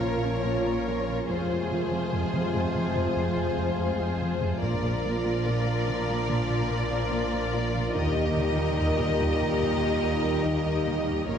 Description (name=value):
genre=cinematic, hybrid orchestral and electronic film score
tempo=72 BPM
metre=4/4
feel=straight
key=unclear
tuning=A4 = 440 Hz
part: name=warm symphonic violin section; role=melody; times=0.0-11.4 s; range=C5 to Eb5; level=-32 LUFS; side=left 3 dB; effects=none
part: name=warm symphonic violin section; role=second line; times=0.0-11.4 s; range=Ab4 to Bb4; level=-34 LUFS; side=left 1 dB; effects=none
part: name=rich symphonic viola section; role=accompaniment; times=0.0-11.4 s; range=F4 to G4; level=-34 LUFS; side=left 2 dB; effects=none
part: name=bright trombone section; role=sustained chords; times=0.0-11.4 s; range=Bb2 to G3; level=-37 LUFS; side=right 1 dB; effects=none
part: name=deep dark ambient pad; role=sustained chords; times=0.0-11.4 s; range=F3 to Eb5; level=-35 LUFS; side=right 1 dB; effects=chorus, built-in reverb
part: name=mellow French horn section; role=sustained chords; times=0.0-11.4 s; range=Ab3 to Eb4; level=-37 LUFS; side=left 3 dB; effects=none
part: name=soft round pluck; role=arpeggios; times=0.0-11.4 s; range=Eb3 to Bb4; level=-39 LUFS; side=left 2 dB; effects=none
part: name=smooth gliding synth bass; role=riff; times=0.0-11.4 s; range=Eb2 to Bb3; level=-32 LUFS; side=right 1 dB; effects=none
part: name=warm symphonic cello section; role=bass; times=0.0-11.4 s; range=F2 to Eb3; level=-33 LUFS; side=right 2 dB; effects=none
part: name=warm symphonic double bass section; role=bass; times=0.0-11.4 s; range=F1 to Eb2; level=-33 LUFS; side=right 2 dB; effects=none
room=wet scoring stage reverb, RT60 1.5 s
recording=heard from further back in the room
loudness=-24 LUFS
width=side -8 dB against mid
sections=0.0-11.4 A section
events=none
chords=0.0 Bbm; 1.3 Fm; 4.6 Bb; 8.0 Eb